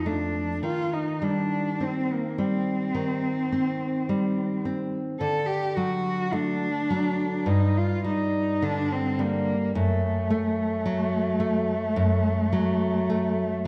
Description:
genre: romantic duo for cello and classical guitar.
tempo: 53 BPM.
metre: 4/4.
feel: rubato.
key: unclear.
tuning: A4 = 440 Hz.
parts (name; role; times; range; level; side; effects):
rich cello; melody; 0.0-13.6 s; A3 to A4; -30 LUFS; equal; none.
nylon-string guitar; accompaniment; 0.0-13.7 s; F2 to C4; -28 LUFS; equal; none.
room: wet recital hall reverb, RT60 1.7 s.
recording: none.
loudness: -26 LUFS.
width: mono.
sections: 0.0-13.7 A section.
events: none.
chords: 0.0 F6; 0.7 Cm/Eb; 5.2 D; 7.5 G5; 9.8 F#m.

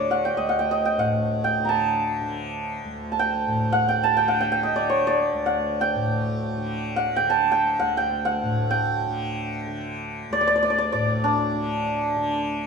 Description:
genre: indian classical, Hindustani.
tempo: free time.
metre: none.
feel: none.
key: D major.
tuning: A4 = 439 Hz.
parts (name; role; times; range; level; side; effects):
santur; melody; 0.0-12.7 s; D4 to Bb5; -22 LUFS; right 1 dB; none.
tanpura; drone; 0.0-12.7 s; D2 to D3; -28 LUFS; left 1 dB; none.
room: wet stone room reverb, RT60 1.2 s.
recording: band playing live in one room.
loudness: -21 LUFS.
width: side -5 dB against mid.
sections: 0.0-12.7 A section.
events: none.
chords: none.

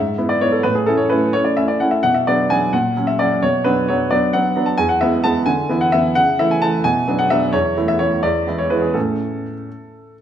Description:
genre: classical-period piano sonatina.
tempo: 86 BPM (dotted quarters).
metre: 6/8.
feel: straight.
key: A major.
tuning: A4 = 443 Hz.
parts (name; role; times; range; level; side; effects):
clear baby grand piano; solo; 0.0-10.1 s; E2 to A5; -15 LUFS; equal; none.
room: wet recital hall reverb, RT60 1.5 s.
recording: none.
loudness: -15 LUFS.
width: side -9 dB against mid.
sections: 0.0-10.2 A section.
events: none.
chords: 0.0 E/G#; 0.6 A; 2.0 Bm; 2.7 F#/A#; 3.4 Bm; 4.8 E; 5.5 E7/D; 6.2 A/C#; 6.8 Bm; 7.5 A/E; 8.2 E; 9.0 A.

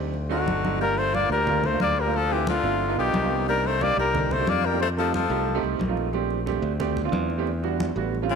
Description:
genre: Afro-Cuban jazz.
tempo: 180 BPM.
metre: 4/4.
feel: straight.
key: G minor.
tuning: A4 = 440 Hz.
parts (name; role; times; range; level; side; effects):
warm baby grand piano; accompaniment; 0.0-8.4 s; G3 to A4; -28 LUFS; right 12 dB; none.
modern bright fingered electric bass; bass; 0.0-8.4 s; G1 to F2; -28 LUFS; left 1 dB; none.
congas; percussion; 0.1-8.4 s; none; -32 LUFS; left 1 dB; none.
breathy trumpet; melody; 0.3-5.6, 8.3-8.4 s; E#4 to D5; -26 LUFS; left 1 dB; none.
edgy tenor saxophone; second line; 0.3-5.6, 8.3-8.4 s; C#3 to Bb3; -28 LUFS; left 12 dB; none.
room: moderate plate reverb, RT60 3.3 s.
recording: 1960s-style stereo with parts hard left and right.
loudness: -22 LUFS.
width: side -6 dB against mid.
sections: 0.8-8.4 A section.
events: none.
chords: 0.1 D7b9; 0.8 Gm9; 2.1 Dm9; 2.8 G7b13; 3.5 Cm9; 4.8 F9; 6.1 Bbmaj13; 7.5 Em9.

